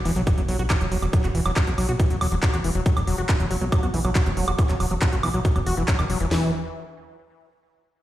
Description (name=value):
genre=psychedelic trance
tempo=139 BPM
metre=4/4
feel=straight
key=unclear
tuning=A4 = 440 Hz
part: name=sub drop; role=sound effects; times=0.0-1.1 s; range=none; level=-37 LUFS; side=equal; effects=none
part: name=overdriven acid bass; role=riff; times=0.1-6.5 s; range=D#3 to F#4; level=-27 LUFS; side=moving between left 4 dB and right 3 dB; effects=auto-pan, sidechain pumping, ping-pong delay
part: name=plucky analog bass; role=bass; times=0.1-6.5 s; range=E1 to B1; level=-24 LUFS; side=equal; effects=none
part: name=big-room dance drum kit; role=drums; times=0.1-6.3 s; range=handclaps, hi-hat, woodblock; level=-29 LUFS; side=right 1 dB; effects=none
part: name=garage drum kit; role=drums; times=0.3-6.4 s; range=hi-hat, kick drum, snare drum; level=-22 LUFS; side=equal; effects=none
room=light reverb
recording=played on a big sound system in a bare room, stone room reverb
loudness=-20 LUFS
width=side -14 dB against mid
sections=0.0-6.3 A section; 6.3-8.0 B section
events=impact 0.0-1.1; filter sweep on analog synth bass 0.0-6.3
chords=0.0 E5; 6.3 N.C.